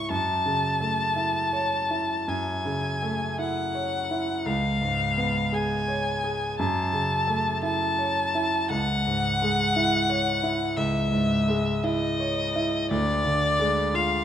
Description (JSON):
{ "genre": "classical, romantic duo for violin and grand piano", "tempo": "56 BPM", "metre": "4/4", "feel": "uneven beats, rubato", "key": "unclear", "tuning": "A4 = 440 Hz", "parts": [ { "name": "rich violin", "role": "melody", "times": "0.0-14.2 s", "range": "D5 to C#6", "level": "-25 LUFS", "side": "left 2 dB", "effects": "none" }, { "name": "clear concert grand piano", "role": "accompaniment", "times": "0.0-14.2 s", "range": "C#2 to C#5", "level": "-26 LUFS", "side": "right 1 dB", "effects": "none" } ], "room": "wet recital hall reverb, RT60 1.4 s", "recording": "none", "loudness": "-23 LUFS", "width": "side -9 dB against mid", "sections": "0.0-14.2 A section", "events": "none", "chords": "0.1 F#m7; 4.5 C#7; 6.6 F#m7; 8.7 C#m; 12.9 Ddim" }